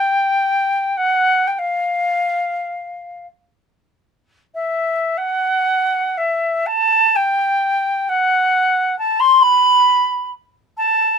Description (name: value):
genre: classical, free, expressive piece for unaccompanied flute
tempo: 26-46 BPM (dotted quarters)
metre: 6/8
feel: rubato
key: unclear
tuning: A4 = 441 Hz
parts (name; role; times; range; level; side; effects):
- silver concert flute; solo; 0.0-11.2 s; E5 to C6; -15 LUFS; equal; none
room: light reverb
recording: minimal, uncompressed stereo recording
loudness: -15 LUFS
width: side -6 dB against mid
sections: 0.0-5.2 A section; 5.2-11.2 B section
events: none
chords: none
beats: | 1.56 3.25 | 5.17 6.65 | 8.09 9.42 | 10.77